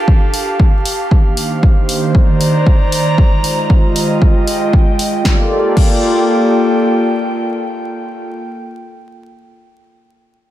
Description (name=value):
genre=deep house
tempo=116 BPM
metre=4/4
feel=swing 58% on 16ths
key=G minor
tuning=A4 = 438 Hz
part: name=warm analog pad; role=sustained chords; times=0.0-8.2 s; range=Ab3 to D5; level=-19 LUFS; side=left 2 dB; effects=chorus, sidechain pumping
part: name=airy breathy pad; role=texture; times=0.0-8.5 s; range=Eb3 to Bb5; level=-17 LUFS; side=right 1 dB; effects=chorus, sidechain pumping
part: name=electronic kick drum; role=drums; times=0.1-5.9 s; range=none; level=-11 LUFS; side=equal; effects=none
part: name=punchy analog drum machine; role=drums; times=0.3-5.9 s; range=crash cymbal, hi-hat, snare drum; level=-21 LUFS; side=left 1 dB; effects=none
room=light reverb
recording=vinyl crackle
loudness=-11 LUFS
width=side -13 dB against mid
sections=0.0-5.2 A section; 5.2-9.4 B section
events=filter sweep on analog synth pad 0.0-5.2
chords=0.0 Gm9; 1.1 Cm9; 3.2 Fm9; 5.2 Gm9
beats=0.08 0.59 | 1.11 1.63 2.15 2.66 | 3.18 3.70 4.21 4.73 | 5.25 5.77 6.28 6.80 | 7.32 7.83 8.35